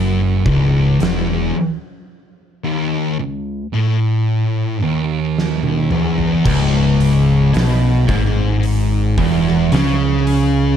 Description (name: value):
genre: stoner and doom metal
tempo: 55 BPM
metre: 4/4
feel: straight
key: C# minor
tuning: A4 = 440 Hz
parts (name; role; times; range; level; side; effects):
- thick fuzz guitar; riff; 0.0-10.8 s; C#2 to C#3; -18 LUFS; left 6 dB; distortion
- thick fuzz guitar; riff; 0.0-10.8 s; C#2 to C#3; -19 LUFS; right 6 dB; distortion
- growling picked electric bass; bass; 0.0-10.8 s; C#1 to C#2; -20 LUFS; equal; overdrive
- oversized low-tuned drum kit; drums; 0.5-10.5 s; crash cymbal, hi-hat, kick drum, snare drum, toms; -22 LUFS; equal; none
- biting overdriven guitar; riff; 6.4-10.8 s; C#2 to C#3; -20 LUFS; equal; none
room: light reverb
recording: dark, warm production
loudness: -14 LUFS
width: side -9 dB against mid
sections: 0.0-6.5 A section; 6.5-10.8 B section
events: break 2.1-6.5; drum fill 5.4-6.5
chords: 0.0 C#m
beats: 1.00 | 2.09 3.18 4.27 5.36 | 6.45 7.54 8.63 9.72